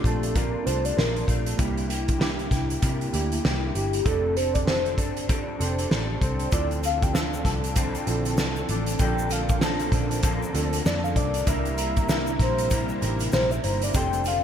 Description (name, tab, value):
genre	indie pop, bedroom pop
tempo	97 BPM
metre	4/4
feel	swing 60% on 16ths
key	unclear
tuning	A4 = 440 Hz
part	electric guitar through a small old amp	accompaniment	0.0-14.4 s	Bb2 to C5	-32 LUFS	left 3 dB	ensemble chorus, vibrato effect
part	warbly lo-fi synth keys	accompaniment	0.0-14.4 s	Bb3 to A5	-32 LUFS	right 6 dB	chorus
part	vintage muted picked electric bass	bass	0.0-14.4 s	F1 to C3	-28 LUFS	equal	none
part	loose indie drum kit	drums	0.0-14.4 s	hi-hat, kick drum, snare drum	-27 LUFS	equal	gated reverb
part	soft octave-layered synth lead	melody	0.1-14.4 s	G4 to A5	-29 LUFS	left 1 dB	phaser, wide subtle chorus, digital delay
part	soft string machine	sustained chords	6.5-14.4 s	C3 to A4	-33 LUFS	left 1 dB	ensemble chorus
part	egg shaker	percussion	6.5-14.4 s	none	-42 LUFS	left 9 dB	none
room	light reverb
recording	bright 1980s-style digital production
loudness	-22 LUFS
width	side -9 dB against mid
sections	0.0-14.4 A section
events	soft synth lead solo 0.0-14.4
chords	0.0 Bbmaj7; 1.6 C7; 4.1 F6; 6.5 Dm7; 9.0 Bbmaj7; 11.5 C7